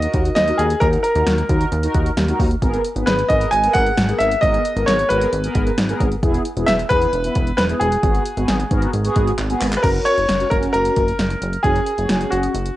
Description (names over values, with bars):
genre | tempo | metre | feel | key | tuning
synth-pop | 133 BPM | 4/4 | straight | G# minor | A4 = 440 Hz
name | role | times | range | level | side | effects
clear concert grand piano | melody | 0.0-12.8 s | F#4 to G#5 | -19 LUFS | equal | cassette tape, analog delay
mellow synth brass | accompaniment | 0.0-12.5 s | B3 to B4 | -23 LUFS | equal | chorus, phaser
chorused synth bass | bass | 0.0-12.7 s | E1 to D#2 | -22 LUFS | equal | tube saturation
deep house drum kit | drums | 0.0-12.8 s | crash cymbal, handclaps, hi-hat, kick drum, snare drum | -21 LUFS | equal | overdrive, cassette tape
room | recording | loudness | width
moderate digital room reverb, RT60 1.1 s | home recording on cassette, nothing above 10.8 kHz | -16 LUFS | side -15 dB against mid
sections
0.0-9.8 A section; 9.8-12.8 B section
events
drum fill 9.4-9.8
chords
0.0 D#m; 2.6 G#madd9; 6.2 E; 8.0 G#m7; 9.8 F#